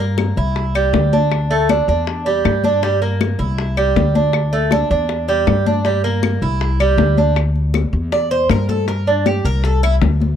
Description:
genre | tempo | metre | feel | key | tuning
latin, Cuban son and guajira | 159 BPM | 4/4 | straight | unclear | A4 = 439 Hz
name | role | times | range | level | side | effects
Cuban tres | arpeggios | 0.0-9.9 s | G3 to D5 | -18 LUFS | right 3 dB | none
upright bass | bass | 0.0-10.4 s | C2 to G2 | -18 LUFS | left 1 dB | none
congas | percussion | 0.0-10.4 s | none | -23 LUFS | left 6 dB | none
bongos | percussion | 0.2-10.4 s | none | -25 LUFS | left 11 dB | none
claves | percussion | 0.2-10.0 s | none | -27 LUFS | left 16 dB | none
room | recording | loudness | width
small room reverb | dry, close 1970s-style studio recording | -14 LUFS | side -9 dB against mid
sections
0.0-7.4 A section; 7.4-10.4 B section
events
Cuban tres solo 7.4-10.4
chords
0.0 Gm; 0.6 C; 1.3 D5; 2.1 Em7; 2.8 Gm; 3.6 C; 4.3 D5; 5.1 Em7; 5.9 Gm; 6.6 C; 7.4 Dsus2; 8.1 Em7b5; 8.9 Gmadd11; 9.6 C69

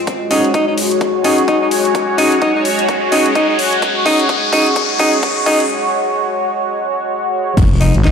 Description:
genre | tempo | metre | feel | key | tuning
bass house | 128 BPM | 4/4 | swing 59% on 16ths | unclear | A4 = 440 Hz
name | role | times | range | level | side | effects
sweeping resonant pad | sustained chords | 0.0-8.1 s | Ab3 to Db5 | -18 LUFS | right 2 dB | chorus, sidechain pumping
warbly tape-like pad | texture | 0.0-5.7 s | Gb4 to Ab5 | -20 LUFS | left 5 dB | chorus, built-in reverb, sidechain pumping
electronic kick drum | drums | 0.1-8.1 s | none | -17 LUFS | equal | overdrive, high-pass filter on kick
house drum kit | drums | 0.1-8.1 s | crash cymbal, hi-hat, snare drum | -23 LUFS | left 3 dB | overdrive, high-pass filter on hats, high-pass filter on cymbals, high-pass filter on snare
riser and impact | sound effects | 1.6-8.1 s | none | -21 LUFS | left 2 dB | none
edgy alto saxophone | melody | 0.3-8.1 s | Eb4 | -18 LUFS | equal | digital delay
bright baby grand piano | stabs | 0.3-5.6 s | Db4 to Ab4 | -20 LUFS | right 1 dB | sidechain pumping, low-pass filter, digital delay
growling FM bass | bass | 7.6-8.1 s | F1 to Ab1 | -12 LUFS | left 1 dB | tube saturation, sidechain pumping
room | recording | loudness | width
moderate lush hall reverb, RT60 1.7 s | played on a big sound system in a bare room, large studio reverb, high-pass filter | -12 LUFS | side -6 dB against mid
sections
0.0-7.6 A section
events
build-up 0.0-7.6; filter sweep 0.0-7.6; drum fill 0.1-5.7; riser 1.6-5.7; break 5.7-7.6; impact 7.6-8.1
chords
0.1 Gbsus2; 7.6 Fm

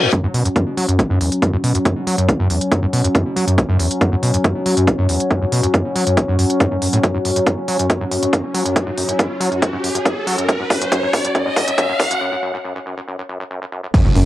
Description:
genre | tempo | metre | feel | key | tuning
driving peak-time techno | 139 BPM | 4/4 | straight | unclear | A4 = 441 Hz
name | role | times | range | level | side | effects
overdriven acid bass | riff | 0.0-14.2 s | F#1 to F#3 | -20 LUFS | equal | cassette tape, sidechain pumping, tape echo
analog drone | drone | 0.0-14.3 s | F#3 to C#4 | -22 LUFS | left 1 dB | chorus, sidechain pumping, cassette tape
reverse cymbal, riser and impact | sound effects | 0.0-0.1, 8.3-14.3 s | none | -22 LUFS | equal | none
electronic kick drum | drums | 0.1-14.0 s | none | -17 LUFS | equal | overdrive, high-pass filter on kick, cassette tape
techno drum kit | drums | 0.1-14.2 s | crash cymbal, hi-hat | -25 LUFS | equal | overdrive, sidechain pumping on hats, cassette tape, sidechain pumping on cymbals
electronic hi-hat | drums | 13.9-14.3 s | none | barely audible | none | none
dark detuned saw bass | bass | 14.2-14.3 s | F#1 | -13 LUFS | equal | sidechain pumping
room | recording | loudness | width
wet booth ambience, RT60 0.2 s | home recording on cassette, high-pass filter | -15 LUFS | side -15 dB against mid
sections
0.1-13.9 A section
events
build-up 0.1-13.9; filter sweep on acid bass 0.1-13.9; filter sweep 0.1-13.9; drum fill 7.0-12.2; riser 8.3-12.2; break 12.2-13.9; impact 13.9-14.3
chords
0.1 F#5

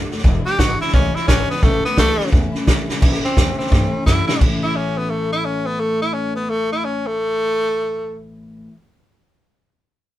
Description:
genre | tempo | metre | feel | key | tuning
rockabilly | 173 BPM | 4/4 | swing 62% on 8ths | A major | A4 = 443 Hz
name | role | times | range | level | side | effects
picked steel-string acoustic guitar | accompaniment | 0.0-8.7 s | E2 to F#4 | -25 LUFS | left 2 dB | none
upright bass | bass | 0.0-8.7 s | E1 to G2 | -24 LUFS | equal | none
vintage drum kit | drums | 0.1-4.5 s | crash cymbal, hi-hat, kick drum, snare drum | -17 LUFS | equal | none
bright tenor saxophone | melody | 0.5-8.2 s | A3 to G4 | -20 LUFS | equal | none
room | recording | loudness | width
light reverb | band playing live in one room | -16 LUFS | side -13 dB against mid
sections
0.0-3.0 A section; 3.0-4.4 B section; 4.4-7.2 C section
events
drum fill 2.8, 3.7-4.4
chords
0.2 E7; 1.6 A

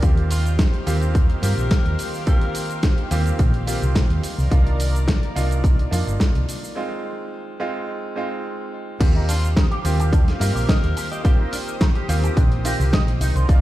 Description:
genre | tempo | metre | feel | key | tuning
nu-disco, nu disco | 107 BPM | 4/4 | straight | unclear | A4 = 441 Hz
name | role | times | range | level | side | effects
bright baby grand piano | accompaniment | 0.0-13.6 s | Ab3 to D5 | -28 LUFS | right 2 dB | sidechain pumping, ping-pong delay
lush unison pad | sustained chords | 0.0-13.6 s | Eb3 to Eb6 | -31 LUFS | equal | chorus, sidechain pumping
hollow-body short-scale fingered electric bass | bass | 0.0-13.6 s | G1 to G2 | -20 LUFS | equal | none
dusty soul sampler-style drum kit | drums | 0.0-13.6 s | crash cymbal, hi-hat, shaker, snare drum | -27 LUFS | equal | none
electronic kick drum | drums | 0.0-13.6 s | none | -18 LUFS | equal | overdrive
growling tenor saxophone | melody | 0.3-2.8, 9.3-11.8 s | F4 to Bb4 | -34 LUFS | left 2 dB | digital delay
electric guitar with an envelope filter | riff | 9.2-13.5 s | Eb3 to Eb5 | -31 LUFS | right 1 dB | lush chorus
room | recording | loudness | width
digital ambience | played on a big sound system in a bare room, stone room reverb | -18 LUFS | side -15 dB against mid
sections
0.0-9.0 A section; 9.0-13.6 B section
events
break 6.8-9.0; drop 9.0-13.6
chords
0.0 Eb69; 4.2 Cm11; 6.8 Ab6; 9.0 Eb69

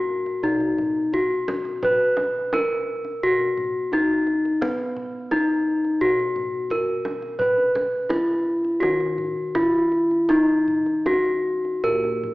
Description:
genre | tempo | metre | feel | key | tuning
Javanese gamelan | 85 BPM | 4/4 | uneven beats | unclear | A4 = 441 Hz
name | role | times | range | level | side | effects
gamelan-type bronze metallophone | melody | 0.0-12.3 s | Cb4 to Cb5 | -20 LUFS | equal | none
gamelan-type bossed gongs | bass | 0.0-12.3 s | Bb2 to Cb5 | -28 LUFS | equal | none
kendang | percussion | 0.3-12.3 s | none | -35 LUFS | right 1 dB | none
room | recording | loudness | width
wet recital hall reverb, RT60 1.6 s | recorded in a church or concert hall, AM radio sound | -20 LUFS | side -19 dB against mid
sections
0.0-12.3 A section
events
none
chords
none

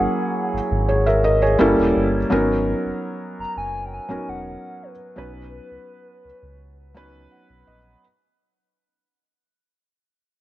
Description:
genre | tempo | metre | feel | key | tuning
contemporary R&B | 84 BPM | 4/4 | straight | B major | A4 = 439 Hz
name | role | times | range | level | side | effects
hollow clarinet-like synth lead | melody | 0.0-7.7 s | B4 to A#5 | -30 LUFS | left 1 dB | chorus, tremolo, cassette tape, analog delay
felt-muted upright piano | accompaniment | 0.0-8.0 s | F#3 to F#5 | -20 LUFS | equal | cassette tape
sub bass with octave | bass | 0.0-8.0 s | E1 to C#2 | -25 LUFS | equal | none
room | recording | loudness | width
light reverb, studio reverb | home recording on cassette | -18 LUFS | side -15 dB against mid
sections
0.0-8.0 A section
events
fade-out 0.0-8.0; felt piano fill 7.0-8.0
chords
0.0 F#7; 1.6 Gdim7; 2.3 G#m11; 5.2 Bmaj7

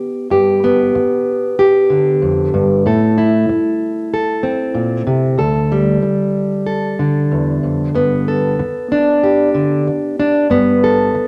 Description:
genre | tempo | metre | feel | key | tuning
folk, solo fingerstyle acoustic guitar | 94 BPM | 4/4 | straight | unclear | A4 = 440 Hz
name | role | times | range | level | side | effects
fingerpicked plugged-in steel-string acoustic guitar | solo | 0.0-11.3 s | D2 to A4 | -15 LUFS | equal | none
room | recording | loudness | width
moderate studio reverb, RT60 0.8 s | none | -15 LUFS | mono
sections
0.0-7.9 A section; 7.9-11.3 B section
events
none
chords
0.0 G; 2.9 Am; 5.4 Dm; 7.9 G

